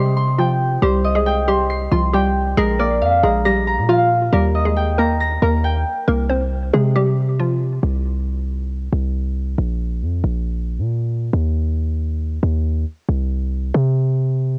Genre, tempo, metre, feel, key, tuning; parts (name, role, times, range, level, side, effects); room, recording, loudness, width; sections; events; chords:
hip hop, trap; 137 BPM; 4/4; half-time; C minor; A4 = 440 Hz
hollow square pluck; melody; 0.0-7.8 s; F3 to C5; -23 LUFS; equal; chorus, cassette tape
concert harp; accompaniment; 0.0-7.2 s; Bb4 to C7; -22 LUFS; equal; cassette tape
hard-hitting 808-style bass; bass; 0.0-14.6 s; Bb1 to C3; -21 LUFS; equal
studio ambience; home recording on cassette; -19 LUFS; mono
0.0-6.1 A section; 6.1-14.6 B section
break 7.8-14.6
0.0 Cm; 2.6 Bb; 4.3 Eb; 6.1 C5; 9.6 Bb5; 11.3 N.C.; 13.1 C5